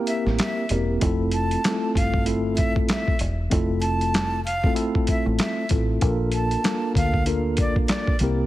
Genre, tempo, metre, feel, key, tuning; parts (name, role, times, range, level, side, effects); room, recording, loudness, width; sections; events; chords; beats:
hip hop, boom-bap hip-hop; 96 BPM; 4/4; swing 57% on 16ths; F major; A4 = 440 Hz
mellow tine electric piano; accompaniment; 0.0-8.5 s; A3 to Bb4; -25 LUFS; equal; medium stereo tremolo, cassette tape
breathy bright jazz flute; melody; 0.1-8.2 s; D5 to A5; -29 LUFS; right 1 dB; analog delay
boom bap sampler-style drum kit; drums; 0.1-8.4 s; handclaps, hi-hat, kick drum, snare drum; -24 LUFS; equal
deep dub fingered electric bass; bass; 0.3-8.5 s; E1 to D2; -25 LUFS; equal
little or no reverb; heavily compressed radio sound; -20 LUFS; side -15 dB against mid
0.0-8.5 A section
break 0.0-1.0
0.0 C7; 1.0 Fmaj7; 6.0 Bbmaj7
0.39 | 1.02 1.64 2.27 2.89 | 3.52 4.14 4.77 5.39 | 6.02 6.64 7.27 7.89